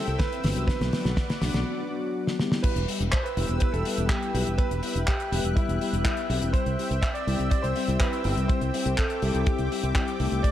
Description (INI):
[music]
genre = italo disco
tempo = 123 BPM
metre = 4/4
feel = straight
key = E minor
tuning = A4 = 440 Hz
[part]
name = warm baby grand piano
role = melody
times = 0.0-10.5 s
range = E4 to E5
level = -32 LUFS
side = equal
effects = tape echo
[part]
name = lush unison pad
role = sustained chords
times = 0.0-10.5 s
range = C4 to F#6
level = -34 LUFS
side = equal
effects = chorus
[part]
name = mellow synth brass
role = stabs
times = 0.0-10.5 s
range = F#3 to A4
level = -31 LUFS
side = left 3 dB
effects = chorus
[part]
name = fingered electric bass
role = bass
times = 0.1-10.4 s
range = E1 to C2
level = -28 LUFS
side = equal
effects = tube saturation
[part]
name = damped 70s drum kit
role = drums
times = 0.1-10.5 s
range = crash cymbal, handclaps, hi-hat, snare drum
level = -31 LUFS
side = left 1 dB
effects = none
[part]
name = kick drum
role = drums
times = 0.2-10.5 s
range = none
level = -25 LUFS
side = equal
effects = none
[sound]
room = light reverb, small room ambience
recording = dark, warm production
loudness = -23 LUFS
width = side -12 dB against mid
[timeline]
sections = 0.0-2.6 A section; 2.6-10.5 B section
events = drum fill 0.0-1.7, 2.3-2.6; filter sweep on analog polysynth 0.0-2.6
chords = 0.0 C; 0.7 Bm; 2.6 Em; 6.5 Gsus2